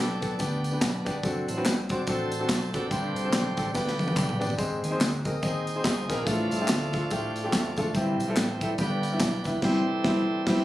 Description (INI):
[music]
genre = uptempo gospel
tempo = 143 BPM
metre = 4/4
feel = swing 59% on 8ths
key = unclear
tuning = A4 = 438 Hz
[part]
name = clear baby grand piano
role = accompaniment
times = 0.0-10.6 s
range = G2 to Eb5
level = -29 LUFS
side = left 1 dB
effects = none
[part]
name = bright tonewheel organ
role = sustained chords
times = 0.0-10.6 s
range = D3 to E5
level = -32 LUFS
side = right 3 dB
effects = overdrive, stopped rotary speaker
[part]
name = vintage muted fingered electric bass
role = bass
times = 0.0-10.6 s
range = F#1 to A2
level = -33 LUFS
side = equal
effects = none
[part]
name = tight funk drum kit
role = drums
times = 0.2-10.6 s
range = crash cymbal, hi-hat, kick drum, snare drum, toms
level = -29 LUFS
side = equal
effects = none
[part]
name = tambourine and handclaps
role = percussion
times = 0.2-9.5 s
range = none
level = -37 LUFS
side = left 1 dB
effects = none
[sound]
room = small room ambience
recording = recorded on a phone in the room, studio reverb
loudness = -24 LUFS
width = side -14 dB against mid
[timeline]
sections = 0.0-10.6 A section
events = tonewheel organ solo 0.0-10.6; drum fill 3.7-4.6, 10.5; band accent 9.6-10.6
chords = 0.0 G; 1.2 D7/F#; 2.9 Gsus4; 3.7 G; 4.6 Ab; 6.3 Dm/A; 7.9 C/G; 8.8 G; 9.6 C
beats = 0.39 0.81 | 1.23 1.65 2.07 2.49 | 2.91 3.33 3.75 4.17 | 4.58 5.00 5.42 5.84 | 6.26 6.68 7.10 7.52 | 7.94 8.36 8.78 9.20 | 9.62 10.04 10.46